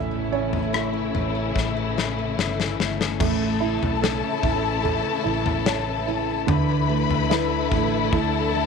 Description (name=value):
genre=pop ballad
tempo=73 BPM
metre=4/4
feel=straight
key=unclear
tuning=A4 = 440 Hz
part: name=dark upright piano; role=accompaniment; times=0.0-8.7 s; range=D3 to E5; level=-27 LUFS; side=right 13 dB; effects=none
part: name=warm studio string section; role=sustained chords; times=0.0-8.7 s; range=C#3 to E4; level=-28 LUFS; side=left 3 dB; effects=none
part: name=picked steel-string acoustic guitar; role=arpeggios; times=0.0-8.7 s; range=A2 to E4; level=-30 LUFS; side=left 12 dB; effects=tape echo
part: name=vintage muted fingered electric bass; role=bass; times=0.0-8.7 s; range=G1 to D2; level=-29 LUFS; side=equal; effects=none
part: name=modern studio drum kit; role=drums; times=0.5-8.3 s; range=crash cymbal, kick drum, rim click, snare drum, toms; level=-26 LUFS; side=left 4 dB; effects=none
part: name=warm symphonic violin section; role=second line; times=3.2-8.7 s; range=A4 to B5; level=-27 LUFS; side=left 15 dB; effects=none
room=small room ambience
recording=1960s-style stereo with parts hard left and right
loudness=-21 LUFS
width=side -5 dB against mid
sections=0.0-3.2 A section; 3.2-8.7 B section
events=upright piano solo 0.0-3.2; drum fill 1.6-3.2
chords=0.0 A; 6.5 Dsus2